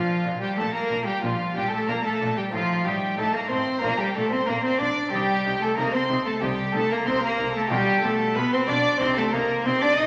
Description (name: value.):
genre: classical, baroque-style concerto movement with solo episodes.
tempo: 93 BPM.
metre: 4/4.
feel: straight.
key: Bb major.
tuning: A4 = 439 Hz.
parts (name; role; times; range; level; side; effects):
rich cello; melody; 0.0-10.1 s; F3 to Eb4; -27 LUFS; equal; none.
warm chamber violin section; melody; 0.0-10.1 s; F5 to Eb6; -33 LUFS; equal; none.
warm chamber violin section; second line; 0.0-10.1 s; F4 to Eb5; -28 LUFS; equal; none.
lute; accompaniment; 0.0-10.1 s; A2 to G4; -40 LUFS; equal; none.
warm chamber viola section; accompaniment; 0.3-10.1 s; D4 to F4; -41 LUFS; equal; none.
rich chamber cello section; bass; 0.3-10.0 s; A2 to C3; -37 LUFS; equal; none.
rich chamber double bass section; bass; 0.3-10.1 s; A1 to C2; -41 LUFS; equal; none.
room: wet recital hall reverb, RT60 1.5 s.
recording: none.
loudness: -24 LUFS.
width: mono.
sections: 0.0-10.1 A section.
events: none.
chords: 0.0 Bb; 2.5 F7/A; 3.8 Bb; 5.1 Cm; 7.7 G7/B; 9.0 Cm.